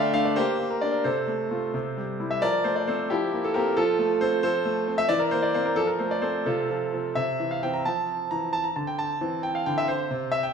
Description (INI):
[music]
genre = classical-period piano sonatina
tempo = 89 BPM (dotted quarters)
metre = 6/8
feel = straight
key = F major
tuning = A4 = 440 Hz
[part]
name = bright concert grand piano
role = solo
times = 0.0-10.5 s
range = C3 to Bb5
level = -23 LUFS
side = equal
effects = none
[sound]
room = moderate recital hall reverb, RT60 1.6 s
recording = recorded in a church or concert hall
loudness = -23 LUFS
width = side -6 dB against mid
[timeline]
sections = 0.0-7.9 A section; 7.9-10.5 B section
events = none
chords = 0.4 Gm/Bb; 1.0 F/C; 1.7 C; 2.4 F; 3.1 C7/F; 3.8 F; 5.1 C7/E; 5.8 F; 6.5 F/C; 7.2 C; 7.9 F; 9.2 C